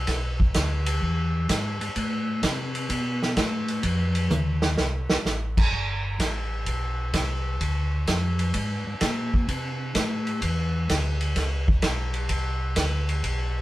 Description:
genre	soul jazz organ trio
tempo	128 BPM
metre	4/4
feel	swing 68% on 8ths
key	G mixolydian from 5.7 s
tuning	A4 = 440 Hz
part	mellow tonewheel organ	bass	0.0-13.6 s	G1 to C3	-26 LUFS	equal	chorus vibrato, slow rotary speaker
part	vintage drum kit	drums	0.1-13.4 s	crash cymbal, hi-hat, kick drum, ride cymbal, snare drum, toms	-26 LUFS	right 1 dB	none
room	light reverb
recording	band playing live in one room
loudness	-23 LUFS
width	side -16 dB against mid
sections	0.0-5.7 A section; 5.7-13.6 A section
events	drum fill 4.3-5.3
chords	none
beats	| 0.08 0.56 1.02 1.50 | 1.97 2.44 2.91 3.38 | 3.85 4.32 4.79 5.26 | 5.73 6.20 6.67 7.14 | 7.61 8.08 8.55 9.02 | 9.49 9.96 10.43 10.90 | 11.37 11.84 12.31 12.78 | 13.25

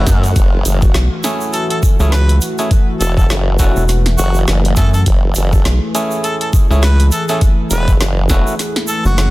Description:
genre	glitch hop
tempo	102 BPM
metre	4/4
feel	swing 58% on 16ths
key	F# minor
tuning	A4 = 440 Hz
part	clear harmonica	melody	0.0-9.3 s	F#4 to B4	-24 LUFS	equal	vintage 12-bit sampler grit, tape echo
part	warm analog pad	sustained chords	0.0-9.3 s	E3 to D#5	-22 LUFS	left 1 dB	chorus, vintage 12-bit sampler grit, sidechain pumping
part	overdriven clav	stabs	0.0-8.5 s	A3 to G#4	-22 LUFS	right 1 dB	sidechain pumping, tape echo
part	formant-sweep wobble bass	bass	0.0-8.4 s	E1 to F#2	-15 LUFS	equal	chorus
part	drum and bass drum kit	drums	0.1-9.3 s	hi-hat, snare drum	-22 LUFS	equal	overdrive, studio reverb
part	electronic kick drum	drums	0.1-8.4 s	none	-12 LUFS	equal	overdrive, studio reverb
part	egg shaker	percussion	0.1-9.3 s	none	-27 LUFS	right 5 dB	none
part	rubbery square bass	bass	0.9-9.3 s	E1 to F#2	-11 LUFS	equal	none
room	digital ambience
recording	dense, heavily limited modern master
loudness	-11 LUFS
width	side -19 dB against mid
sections	0.0-9.3 A section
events	kick drops out 8.6-9.3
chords	0.0 F#m7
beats	| 0.36 0.95 1.54 2.12 | 2.71 3.30 3.89 4.48 | 5.07 5.65 6.24 6.83 | 7.42 8.01 8.60 9.18

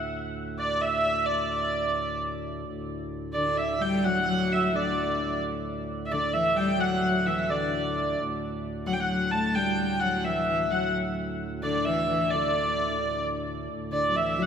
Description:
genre	medieval dance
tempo	87 BPM (dotted quarters)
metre	6/8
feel	straight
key	D major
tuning	A4 = 440 Hz
part	pipe organ, cornet	drone	0.0-14.5 s	D2 to A2	-35 LUFS	right 2 dB	none
part	warm hurdy-gurdy	melody	0.6-14.5 s	D5 to A5	-26 LUFS	right 1 dB	none
part	warm viola da gamba	second line	3.4-14.5 s	D3 to A3	-30 LUFS	left 2 dB	none
room	wet church reverb, RT60 3.8 s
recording	none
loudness	-25 LUFS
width	side -7 dB against mid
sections	0.0-2.7 A section; 2.7-13.7 A section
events	none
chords	none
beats	0.60 | 1.29 1.98 | 2.67 3.35 | 4.04 4.73 | 5.42 6.11 | 6.80 7.49 | 8.18 8.87 | 9.55 10.24 | 10.93 11.62 | 12.31 13.00 | 13.69 14.38

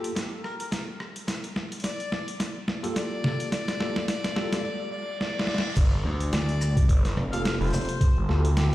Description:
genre	glitch hop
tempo	107 BPM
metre	4/4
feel	swing 56% on 16ths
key	G minor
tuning	A4 = 440 Hz
part	barky tine electric piano	stabs	0.0-8.4 s	Bb3 to A4	-34 LUFS	equal	medium stereo tremolo, sidechain pumping, low-pass filter, tape echo
part	boom bap sampler-style drum kit	drums	0.0-8.7 s	crash cymbal, hi-hat, rim click, shaker, snare drum	-30 LUFS	equal	overdrive
part	electronic kick drum	drums	0.2-8.1 s	none	-21 LUFS	equal	overdrive, high-pass filter on kick
part	warm harmonica	melody	0.4-8.7 s	G4 to F5	-35 LUFS	left 3 dB	tape echo
part	reverse cymbal	sound effects	4.9-5.8 s	none	-39 LUFS	right 5 dB	none
part	phased detuned saw bass	bass	5.8-8.7 s	F1 to D2	-24 LUFS	equal	phaser, overdrive
part	gritty slap bass	bass	6.0-7.9 s	F1 to D2	-26 LUFS	equal	overdrive
room	light reverb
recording	played on a big sound system in a bare room, large studio reverb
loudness	-24 LUFS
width	side -16 dB against mid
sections	0.0-5.8 A section; 5.8-8.7 B section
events	build-up 0.0-5.8; drum fill 0.0-4.6, 5.2-5.8; reverse cymbal 4.9-5.8; drop 5.8-8.7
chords	0.0 Gm9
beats	0.16 0.72 | 1.28 1.84 2.40 2.96 | 3.52 4.08 4.64 5.21 | 5.77 6.33 6.89 7.45 | 8.01 8.57

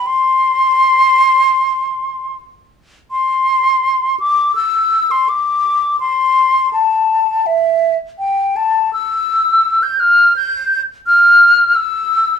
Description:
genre	classical, baroque-style fantasia for unaccompanied flute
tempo	76-87 BPM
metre	4/4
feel	rubato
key	unclear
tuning	A4 = 442 Hz
part	mellow hollow silver concert flute	solo	0.0-12.4 s	E5 to G6	-11 LUFS	left 1 dB	none
room	light reverb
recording	none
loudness	-11 LUFS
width	side -7 dB against mid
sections	0.0-3.1 A section; 3.1-12.4 A section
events	none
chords	none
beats	| 0.06 0.83 1.59 2.35 | 3.12 3.85 4.56 5.28 | 6.00 6.73 7.46 8.18 | 8.93 9.64 10.36 11.06 | 11.75

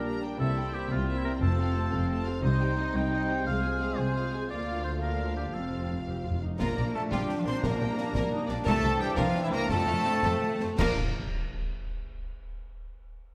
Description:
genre	cinematic, heroic adventure film score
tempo	116 BPM (dotted quarters)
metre	6/8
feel	straight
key	Bb major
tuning	A4 = 440 Hz
part	clear symphonic violin section	melody	0.0-11.0 s	F4 to Bb5	-44 LUFS	equal	none
part	warm oboe	second line	0.0-6.1 s	E4 to G5	-37 LUFS	equal	none
part	warm studio violin section	second line	0.0-11.0 s	C4 to C6	-40 LUFS	equal	none
part	warm symphonic viola section	accompaniment	0.0-11.0 s	G3 to Bb4	-42 LUFS	equal	none
part	bright trombone section	sustained chords	0.0-10.9 s	Bb2 to D4	-41 LUFS	equal	none
part	mellow French horn section	sustained chords	0.0-6.4 s	Bb3 to F4	-40 LUFS	equal	none
part	dark trumpet section	stabs	0.0-10.9 s	E4 to F5	-38 LUFS	equal	none
part	rich studio cello section	bass	0.0-11.0 s	C2 to C4	-36 LUFS	equal	none
part	rich symphonic double bass section	bass	0.0-11.0 s	F1 to F2	-35 LUFS	equal	none
part	timpani	percussion	5.5-8.1, 10.8-11.0 s	F2 to Bb2	-39 LUFS	equal	none
part	concert snare drum, clash cymbals and concert bass drum	drums	6.6-11.0 s	none	-39 LUFS	equal	none
part	cymbal swell, clash cymbals and concert bass drum	percussion	8.7-11.5 s	none	-40 LUFS	equal	none
room	moderate scoring stage reverb, RT60 1.7 s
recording	none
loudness	-29 LUFS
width	mono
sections	0.0-6.6 A section; 6.6-10.8 B section; 10.8-11.9 C section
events	timpani fill 5.5-6.6; slowing down 8.2-10.8; band accent 10.8-11.2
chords	0.4 C7; 1.4 F; 2.4 Cm; 3.5 Fm/C; 4.5 Bb/D; 5.5 F; 6.6 Bb; 7.6 Gm/Bb; 8.7 C7; 9.7 F; 10.8 Bb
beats	| 0.39 0.91 | 1.42 1.93 | 2.44 2.95 | 3.46 3.98 | 4.50 5.02 | 5.55 6.08 | 6.60 7.12 | 7.64 8.15 | 8.67 9.18 | 9.71 10.24 | 10.80 11.35

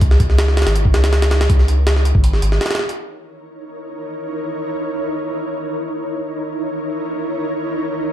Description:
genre	drum and bass, jungle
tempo	162 BPM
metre	4/4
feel	straight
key	C# dorian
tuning	A4 = 440 Hz
part	ethereal airy pad	sustained chords	0.0-8.1 s	D#4 to C#5	-24 LUFS	equal	ensemble chorus, built-in reverb, tremolo
part	soft dub sub bass	bass	0.0-2.6 s	G#1 to C#2	-14 LUFS	equal	tube saturation
part	jungle sampler-style drum kit	drums	0.0-3.0 s	hi-hat, kick drum, snare drum	-16 LUFS	equal	none
room	light reverb, digital ambience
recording	dark, warm production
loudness	-16 LUFS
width	side -11 dB against mid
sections	0.0-3.0 A section; 3.0-8.1 B section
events	drop 0.0-3.0; break 2.2-3.0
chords	0.0 C#m69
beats	| 0.02 0.39 0.76 1.13 | 1.50 1.87 2.24 2.61 | 2.98 3.35 3.72 4.09 | 4.46 4.83 5.20 5.57 | 5.94 6.31 6.68 7.05 | 7.42 7.79

